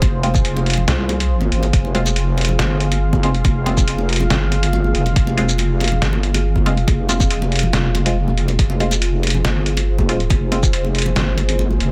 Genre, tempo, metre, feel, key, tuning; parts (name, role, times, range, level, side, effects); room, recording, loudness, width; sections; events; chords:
deep dubstep; 140 BPM; 4/4; half-time; F minor; A4 = 440 Hz
deep dark ambient pad; sustained chords; 0.0-11.9 s; F4 to F5; -28 LUFS; equal; chorus, built-in reverb
deep soft wobble bass; bass; 0.0-11.9 s; F1 to C2; -21 LUFS; equal; chorus, tube saturation
electronic kick drum; drums; 0.0-10.7 s; -20 LUFS; equal
trip hop sampler-style drum kit; drums; 0.0-11.9 s; hi-hat, shaker, snare drum; -25 LUFS; equal
congas; percussion; 0.0-11.8 s; -29 LUFS; equal; dub echo
filtered dub chord stab; stabs; 0.2-10.7 s; Ab3 to F4; -29 LUFS; equal; phaser, subtle chorus, dub echo
digital ambience; -17 LUFS; mono
0.0-11.9 A section
0.0 Fm